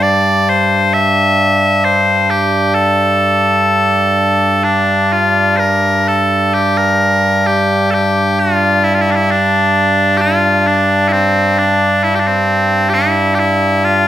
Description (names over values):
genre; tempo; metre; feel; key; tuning
celtic folk; 66 BPM; 3/4; rubato; G dorian; A4 = 439 Hz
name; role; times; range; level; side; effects
loud bright bagpipes; solo; 0.0-14.1 s; G2 to E5; -10 LUFS; equal; none
room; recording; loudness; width
moderate recital hall reverb, RT60 1.6 s; minimal, uncompressed stereo recording; -10 LUFS; side -12 dB against mid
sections
0.0-5.6 A section; 5.6-14.1 B section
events
none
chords
none